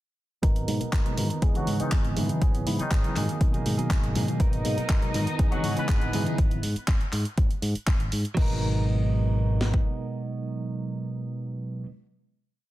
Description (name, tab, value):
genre	filtered disco house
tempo	121 BPM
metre	4/4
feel	straight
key	G# minor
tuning	A4 = 440 Hz
part	direct-recorded clean electric guitar	riff	0.4-11.9 s	E3 to A#4	-35 LUFS	right 5 dB	vibrato effect, sidechain pumping, low-pass filter
part	fingered electric bass	bass	0.4-9.8 s	G#1 to G#2	-28 LUFS	equal	sidechain pumping, low-pass filter
part	house drum kit	drums	0.4-9.8 s	kick drum, snare drum	-24 LUFS	equal	none
part	house drum kit	drums	0.4-8.5 s	crash cymbal, handclaps, hi-hat	-35 LUFS	right 1 dB	sidechain pumping on hats, sidechain pumping on cymbals
part	tambourine and congas	percussion	0.4-6.4 s	none	-34 LUFS	left 2 dB	sidechain pumping on perc, low-pass filter on perc
part	tine electric piano	accompaniment	0.7-11.8 s	B2 to A#4	-30 LUFS	right 1 dB	overdrive, phaser, sidechain pumping, low-pass filter
part	bright horn section	melody	1.6-6.3 s	D#3 to B4	-35 LUFS	left 1 dB	sidechain pumping, low-pass filter, tape echo
part	warm symphonic violin section	sustained chords	4.4-6.4 s	D#4 to D#5	-36 LUFS	left 1 dB	sidechain pumping, low-pass filter
room	little or no reverb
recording	dense, heavily limited modern master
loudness	-23 LUFS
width	side -16 dB against mid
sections	0.4-8.4 groove; 8.4-12.3 final chord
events	filter sweep 0.4-8.4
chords	0.4 G#m9; 1.4 C#m9/G#; 2.4 F#7sus4/G#; 3.2 G#m9; 5.4 C#m9/G#; 6.4 F#7sus4/G#; 7.1 N.C.; 8.4 G#m9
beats	| 0.43 0.93 1.43 1.92 | 2.42 2.91 3.41 3.90 | 4.40 4.90 5.39 5.89 | 6.38 6.88 7.38 7.87 | 8.37 8.86 9.36 9.86 | 10.35 10.85 11.34 11.84